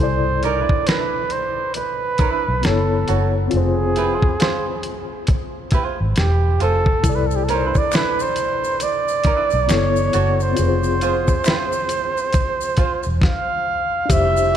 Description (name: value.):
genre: R&B, neo-soul.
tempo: 68 BPM.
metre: 4/4.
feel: swing 61% on 16ths.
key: unclear.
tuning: A4 = 441 Hz.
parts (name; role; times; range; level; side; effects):
trumpet with bucket mute; melody; 0.0-14.6 s; G4 to F5; -21 LUFS; right 3 dB; none.
reed electric piano; accompaniment; 0.0-14.6 s; B2 to E5; -25 LUFS; left 6 dB; medium tremolo.
vintage muted fingered electric bass; bass; 0.0-14.6 s; E1 to C2; -22 LUFS; equal; none.
archtop guitar, miked and amplified; second line; 0.4-13.0 s; D4 to C#5; -27 LUFS; right 5 dB; wah.
dusty soul sampler-style drum kit; drums; 0.4-14.3 s; hi-hat, kick drum, snare drum; -21 LUFS; equal; none.
maracas and finger snaps; percussion; 7.0-14.5 s; none; -34 LUFS; left 6 dB; none.
tonewheel organ; sustained chords; 14.1-14.6 s; F3 to G4; -26 LUFS; left 3 dB; overdrive, chorus vibrato, slow rotary speaker.
room: moderate cathedral reverb, RT60 5.3 s.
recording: recorded in a church or concert hall.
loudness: -16 LUFS.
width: side -9 dB against mid.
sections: 0.0-14.1 A section.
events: none.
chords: 0.0 Cmaj9; 2.6 F#m; 3.5 Fm; 7.0 Cmaj9; 9.7 F#m; 10.6 Fm.